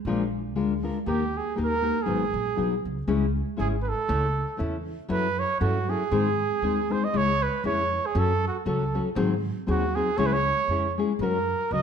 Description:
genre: mexican folk, mariachi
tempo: 119 BPM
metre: 2/4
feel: swing 54% on 8ths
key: G# minor, C# minor from 3.1 s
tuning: A4 = 439 Hz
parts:
  - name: upright bass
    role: bass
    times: 0.0-11.8 s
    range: G#1 to G#2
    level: -30 LUFS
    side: right 1 dB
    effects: none
  - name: nylon-string guitar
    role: accompaniment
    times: 0.1-11.8 s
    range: G#2 to A#4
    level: -27 LUFS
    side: left 4 dB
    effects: none
  - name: mellow trumpet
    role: melody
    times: 1.1-11.8 s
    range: F#4 to D#5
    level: -27 LUFS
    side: right 5 dB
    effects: none
room: wet recital hall reverb, RT60 1.3 s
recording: minimal, uncompressed stereo recording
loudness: -23 LUFS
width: side -7 dB against mid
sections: 0.0-3.1 A section; 3.1-11.8 B section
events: none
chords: 0.1 A#7; 1.1 D#; 2.1 G#m7; 3.1 C#m; 4.1 A/C#; 5.1 F#m7; 6.1 G#; 7.1 C#m; 8.2 F#m; 9.2 G#7; 10.2 C#m; 11.2 F#

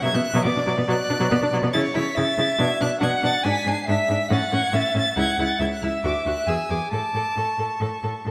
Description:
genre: quick classical-period movement for string quartet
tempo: 139 BPM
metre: 4/4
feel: straight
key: A major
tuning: A4 = 440 Hz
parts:
  - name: rich violin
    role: melody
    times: 0.0-8.3 s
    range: C#6 to C7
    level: -31 LUFS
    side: equal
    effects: none
  - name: rich violin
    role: second line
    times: 0.0-8.3 s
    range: C#5 to A5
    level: -27 LUFS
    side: equal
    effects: none
  - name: rich viola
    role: accompaniment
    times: 0.0-8.3 s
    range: F#3 to A4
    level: -29 LUFS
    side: equal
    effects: none
  - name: rich cello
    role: bass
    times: 0.0-8.3 s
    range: C#2 to C#3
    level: -28 LUFS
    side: equal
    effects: none
room: wet scoring stage reverb, RT60 1.9 s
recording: none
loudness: -23 LUFS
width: mono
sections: 0.0-8.3 A section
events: none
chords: 0.0 Bm; 1.7 A/C#; 2.6 Bm; 3.5 E7/G#; 4.3 A; 5.2 C#m; 6.0 D; 6.5 E7; 6.9 A

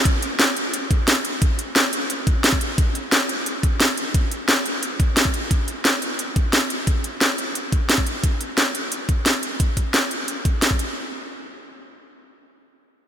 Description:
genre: drum and bass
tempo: 176 BPM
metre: 4/4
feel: straight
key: none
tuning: none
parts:
  - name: drum and bass drum kit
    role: drums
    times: 0.1-10.9 s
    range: hi-hat, snare drum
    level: -20 LUFS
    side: equal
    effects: none
  - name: electronic kick drum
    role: drums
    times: 0.1-10.8 s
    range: none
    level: -20 LUFS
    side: equal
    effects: none
room: moderate huge ambient reverb, RT60 3.8 s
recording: dreamy mix soaked in reverb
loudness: -18 LUFS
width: side -9 dB against mid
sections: 0.1-11.0 A section; 11.0-13.1 B section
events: none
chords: none

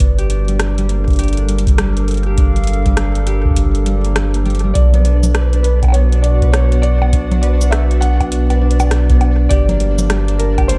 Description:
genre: IDM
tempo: 101 BPM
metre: 4/4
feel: swing 62% on 16ths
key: unclear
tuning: A4 = 437 Hz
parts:
  - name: hollow soft pad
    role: sustained chords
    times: 0.0-10.8 s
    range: B2 to A5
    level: -26 LUFS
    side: equal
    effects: chorus
  - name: concert harp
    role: arpeggios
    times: 0.0-10.8 s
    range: G3 to B4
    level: -26 LUFS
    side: equal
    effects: tape echo
  - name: warm sub bass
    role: bass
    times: 0.0-10.8 s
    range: G1 to B1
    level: -17 LUFS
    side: equal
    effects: none
  - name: electro analog drum machine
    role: drums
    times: 0.0-10.8 s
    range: bongos, cabasa, congas, hi-hat, rim click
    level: -25 LUFS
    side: equal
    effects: small room ambience, tape echo
  - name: electronic kick drum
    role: drums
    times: 0.0-10.7 s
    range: none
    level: -18 LUFS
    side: equal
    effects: small room ambience
  - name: felt-muted upright piano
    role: melody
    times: 4.7-10.8 s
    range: Bb4 to F#5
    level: -26 LUFS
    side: equal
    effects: tape echo
  - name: pulsing gated texture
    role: texture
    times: 4.8-10.8 s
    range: D4 to D5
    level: -36 LUFS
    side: equal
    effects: none
room: digital ambience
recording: dark, warm production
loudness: -14 LUFS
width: mono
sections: 0.0-10.8 A section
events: none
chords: 0.0 Gm7; 4.8 Bm; 9.5 Gm

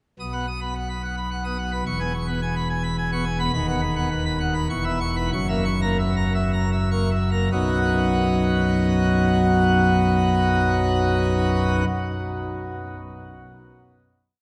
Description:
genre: classical, organ toccata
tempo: 73-108 BPM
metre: 3/4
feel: straight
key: B major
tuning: A4 = 440 Hz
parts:
  - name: pipe organ, plenum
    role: solo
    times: 0.2-11.8 s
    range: D#1 to D#6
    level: -23 LUFS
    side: equal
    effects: none
room: wet cathedral reverb, RT60 7.5 s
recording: none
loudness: -22 LUFS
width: mono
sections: 0.2-7.5 A section; 7.5-12.5 final chord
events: slowing down 2.7-7.5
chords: 0.2 B; 1.9 E6; 3.5 B/D#; 4.7 C#m7/E; 5.3 F#7; 7.5 B

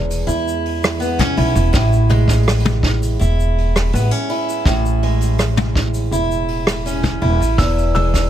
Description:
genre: folktronica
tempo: 82 BPM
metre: 4/4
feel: straight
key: unclear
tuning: A4 = 439 Hz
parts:
  - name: picked acoustic archtop guitar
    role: arpeggios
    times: 0.0-8.3 s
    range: E2 to E4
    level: -20 LUFS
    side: right 1 dB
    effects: tape echo
  - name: upright bass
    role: bass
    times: 0.0-8.3 s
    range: E1 to E2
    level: -17 LUFS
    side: equal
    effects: none
  - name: vintage brush drum kit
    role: drums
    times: 0.1-8.3 s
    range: hi-hat, rim click, shaker, toms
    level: -23 LUFS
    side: left 1 dB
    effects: none
  - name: kick drum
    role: drums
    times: 1.2-8.3 s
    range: none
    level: -18 LUFS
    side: equal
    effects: none
  - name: felt-muted upright piano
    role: melody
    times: 7.6-8.3 s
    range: E6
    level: -22 LUFS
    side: right 2 dB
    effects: none
room: small room ambience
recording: none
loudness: -14 LUFS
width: side -11 dB against mid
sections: 0.0-8.3 A section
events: none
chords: 0.0 E6; 1.7 Amaj7; 7.6 E6

